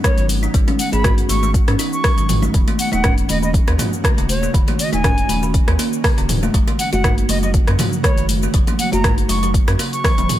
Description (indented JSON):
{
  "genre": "afro house",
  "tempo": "120 BPM",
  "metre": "4/4",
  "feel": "swing 54% on 16ths",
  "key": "unclear",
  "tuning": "A4 = 440 Hz",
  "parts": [
    { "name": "breathy bright concert flute", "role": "melody", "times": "0.0-10.4 s", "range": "C#5 to C#6", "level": "-25 LUFS", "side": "right 1 dB", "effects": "tape echo" },
    { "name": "ethereal airy pad", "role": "sustained chords", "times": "0.0-10.4 s", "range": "C#3 to F#4", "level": "-26 LUFS", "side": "right 2 dB", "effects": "ensemble chorus, built-in reverb, sidechain pumping" },
    { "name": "kalimba", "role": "arpeggios", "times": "0.0-10.2 s", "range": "C#3 to G#4", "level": "-25 LUFS", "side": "equal", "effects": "sidechain pumping, tape echo" },
    { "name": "deep house drum kit", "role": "drums", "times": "0.0-10.4 s", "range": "cabasa, hi-hat, rim click, toms", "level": "-22 LUFS", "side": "equal", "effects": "overdrive" },
    { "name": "electronic kick drum", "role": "drums", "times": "0.0-10.2 s", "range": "none", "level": "-17 LUFS", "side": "equal", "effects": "overdrive" },
    { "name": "congas", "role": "percussion", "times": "0.0-10.4 s", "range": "none", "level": "-25 LUFS", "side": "left 3 dB", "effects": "none" },
    { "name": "round analog bass", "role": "bass", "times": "0.2-10.2 s", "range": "D#1 to G#2", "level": "-21 LUFS", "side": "equal", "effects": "sidechain pumping" }
  ],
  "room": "little or no reverb",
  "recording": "none",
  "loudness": "-14 LUFS",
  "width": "side -13 dB against mid",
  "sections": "0.0-10.4 A section",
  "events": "drum fill 10.0-10.4",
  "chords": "0.0 G#m7; 2.5 D#m7"
}